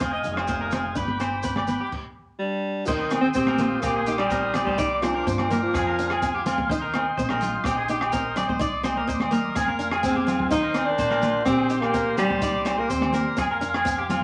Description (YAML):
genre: highlife guitar band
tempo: 126 BPM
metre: 4/4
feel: straight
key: unclear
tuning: A4 = 440 Hz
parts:
  - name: picked steel-string acoustic guitar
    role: accompaniment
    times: 0.0-14.2 s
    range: Bb3 to Eb4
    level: -33 LUFS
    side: equal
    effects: none
  - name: overdriven combo organ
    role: sustained chords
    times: 0.0-14.2 s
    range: C5 to Eb6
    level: -34 LUFS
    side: equal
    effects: none
  - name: electric guitar at the edge of break-up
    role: arpeggios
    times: 0.0-14.2 s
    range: F4 to Eb5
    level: -32 LUFS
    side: equal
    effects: none
  - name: upright bass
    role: bass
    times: 0.0-14.2 s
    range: F1 to G2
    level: -37 LUFS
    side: equal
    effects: none
  - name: compact cocktail drum kit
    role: drums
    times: 0.0-14.2 s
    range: crash cymbal, hi-hat, kick drum, rim click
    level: -36 LUFS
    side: equal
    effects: none
  - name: agogo bells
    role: percussion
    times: 0.0-14.2 s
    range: none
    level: -32 LUFS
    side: equal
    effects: none
  - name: maracas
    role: percussion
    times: 0.2-14.2 s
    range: none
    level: -45 LUFS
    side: equal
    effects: none
  - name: congas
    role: percussion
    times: 0.7-14.2 s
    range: none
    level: -34 LUFS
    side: equal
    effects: none
  - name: breathy alto saxophone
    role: melody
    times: 2.4-6.4, 10.1-13.4 s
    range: Eb3 to Eb4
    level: -27 LUFS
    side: equal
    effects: none
  - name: warm clarinet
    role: second line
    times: 2.4-6.4, 10.1-13.4 s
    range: C4 to C5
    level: -39 LUFS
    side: equal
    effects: none
room: wet club reverb, RT60 0.8 s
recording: vinyl crackle, nothing above 11.0 kHz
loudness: -24 LUFS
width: mono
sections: 0.0-2.9 A section; 2.9-14.2 B section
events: stop 1.9-2.9; drum fill 10.0-10.5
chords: 0.0 Fm7; 1.0 G; 2.9 Eb6; 4.8 Cmadd9; 5.7 Fm; 6.7 Eb6; 8.6 Cmadd9; 9.6 Fm; 10.5 Eb6; 12.4 Cmadd9; 13.4 Fm